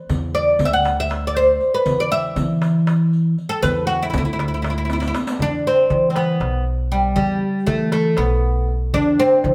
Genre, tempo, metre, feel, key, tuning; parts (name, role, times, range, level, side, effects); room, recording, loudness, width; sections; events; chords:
Turkish makam ensemble; 237 BPM (eighths); 7/8; straight; E makam nihavent; A4 = 441 Hz
upright bass; bass; 0.1-9.5 s; B1 to E3; -24 LUFS; equal
darbuka; percussion; 0.1-9.5 s; -29 LUFS; equal
riq; percussion; 0.1-5.4 s; -32 LUFS; equal
oud; melody; 0.3-9.5 s; G3 to F#5; -20 LUFS; equal
moderate stone room reverb, RT60 1.1 s; band playing live in one room; -19 LUFS; mono
0.0-5.4 A section; 5.4-9.5 B section
drum fill 4.9-5.4